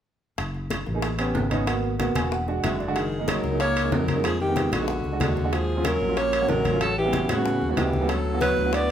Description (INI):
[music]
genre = Afro-Cuban jazz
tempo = 187 BPM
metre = 4/4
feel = straight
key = F# major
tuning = A4 = 440 Hz
[part]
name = fingered electric bass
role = bass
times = 0.4-8.9 s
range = E1 to A2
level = -29 LUFS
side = equal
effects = none
[part]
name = bongos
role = percussion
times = 0.4-8.9 s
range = none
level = -35 LUFS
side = left 4 dB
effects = none
[part]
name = congas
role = percussion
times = 0.4-8.9 s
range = none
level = -32 LUFS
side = left 2 dB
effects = none
[part]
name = timbales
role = percussion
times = 0.4-8.9 s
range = none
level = -32 LUFS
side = right 2 dB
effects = none
[part]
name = warm grand piano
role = accompaniment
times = 0.9-8.9 s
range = F#3 to G#5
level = -28 LUFS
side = right 3 dB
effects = none
[part]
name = breathy alto saxophone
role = melody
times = 2.6-8.9 s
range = F#4 to D5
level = -26 LUFS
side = right 2 dB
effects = none
[part]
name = clear tenor saxophone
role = second line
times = 2.6-8.9 s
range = C#3 to B3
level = -30 LUFS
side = left 4 dB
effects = none
[sound]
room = moderate large studio reverb, RT60 1.0 s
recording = band playing live in one room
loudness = -22 LUFS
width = side -9 dB against mid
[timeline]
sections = 0.4-3.0 A section; 3.0-8.9 B section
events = grand piano fill 2.0-3.0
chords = 0.4 F#6; 1.0 A9; 1.7 G#m7; 2.3 E9; 3.0 F#6; 4.2 Fm7b5; 4.9 A#7alt; 5.5 D#m9; 6.8 A13; 8.1 D69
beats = | 0.38 0.71 1.03 1.35 | 1.67 1.99 2.31 2.64 | 2.96 3.28 3.60 3.92 | 4.24 4.57 4.89 5.21 | 5.53 5.85 6.17 6.49 | 6.82 7.14 7.46 7.78 | 8.10 8.42 8.74